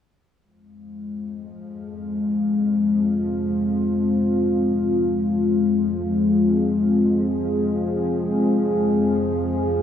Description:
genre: dark ambient drone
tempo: free time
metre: none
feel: none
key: F minor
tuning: A4 = 443 Hz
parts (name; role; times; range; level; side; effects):
- deep dark ambient pad; sustained chords; 1.0-9.8 s; Ab3 to Ab4; -19 LUFS; left 2 dB; chorus, built-in reverb
- bowed-like drone; drone; 1.1-9.8 s; F2 to F3; -31 LUFS; left 1 dB; built-in reverb
room: wet huge ambient reverb, RT60 8.9 s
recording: small room ambience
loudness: -19 LUFS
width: side -9 dB against mid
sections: 0.4-9.8 A section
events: fade-in on synth drone 0.4-9.8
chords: 0.4 Fm

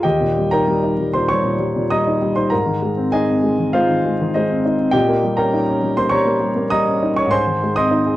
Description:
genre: classical, romantic character piece for solo piano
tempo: 99 BPM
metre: 4/4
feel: rubato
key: Ab major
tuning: A4 = 440 Hz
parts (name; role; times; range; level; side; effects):
- warm concert grand piano; solo; 0.0-8.2 s; Eb2 to Eb6; -15 LUFS; equal; none
room: light reverb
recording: worn, warbling old tape, cassette tape, warbly pitch drift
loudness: -15 LUFS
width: side -15 dB against mid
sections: 0.0-8.2 A section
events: none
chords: 0.0 Eb; 2.5 Ab; 4.9 Eb7/Bb; 7.3 Ab

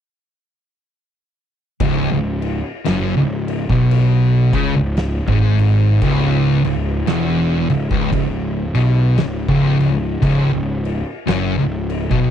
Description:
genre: stoner and doom metal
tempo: 57 BPM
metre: 4/4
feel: swing 59% on 8ths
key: C# minor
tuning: A4 = 442 Hz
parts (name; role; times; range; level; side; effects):
- thick fuzz guitar; riff; 1.8-12.3 s; C#2 to C#3; -18 LUFS; left 5 dB; distortion
- thick fuzz guitar; riff; 1.8-12.3 s; C#2 to C#3; -19 LUFS; right 7 dB; distortion
- fuzz picked electric bass; bass; 1.8-12.3 s; C#1 to C#2; -23 LUFS; equal; overdrive
- oversized low-tuned drum kit; drums; 1.8-12.3 s; crash cymbal, kick drum, snare drum; -25 LUFS; equal; none
room: little or no reverb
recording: dry, close 1970s-style studio recording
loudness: -15 LUFS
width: side -9 dB against mid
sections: 1.8-12.3 A section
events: none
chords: 1.8 C#m

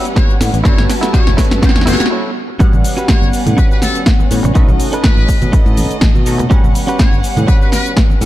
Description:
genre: filtered disco house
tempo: 123 BPM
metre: 4/4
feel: swing 54% on 16ths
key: A mixolydian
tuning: A4 = 435 Hz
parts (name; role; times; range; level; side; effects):
- funky polysynth comp; accompaniment; 0.0-8.3 s; G3 to F#5; -20 LUFS; equal; chorus, phaser, sidechain pumping, low-pass filter
- rich studio violin section; sustained chords; 0.0-8.3 s; G3 to A5; -26 LUFS; equal; sidechain pumping, low-pass filter
- direct-recorded clean electric guitar; riff; 0.0-7.9 s; C#4 to C#5; -24 LUFS; right 2 dB; vintage 12-bit sampler grit, sidechain pumping, low-pass filter
- house drum kit; drums; 0.1-8.3 s; hi-hat, shaker, snare drum; -19 LUFS; equal; sidechain pumping on hats, sidechain pumping on perc
- muted trumpet section; melody; 0.2-7.9 s; A4 to C#5; -24 LUFS; left 2 dB; sidechain pumping, low-pass filter
- electronic kick drum; drums; 0.2-8.1 s; none; -12 LUFS; equal; none
- modern bright fingered electric bass; bass; 0.4-8.3 s; E1 to B2; -17 LUFS; equal; sidechain pumping, low-pass filter
- maracas and congas; percussion; 2.6-8.3 s; none; -23 LUFS; right 2 dB; sidechain pumping on perc, low-pass filter on perc
room: light reverb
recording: dark, warm production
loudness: -10 LUFS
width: side -15 dB against mid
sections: 0.0-2.6 A section; 2.6-8.3 B section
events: build-up 0.0-2.6; drum fill 0.0-2.1; filter sweep 0.0-2.6; break 2.1-2.6; drop 2.6-8.3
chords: 0.0 A13; 0.7 G69; 2.6 A13; 4.6 B9; 6.5 A13

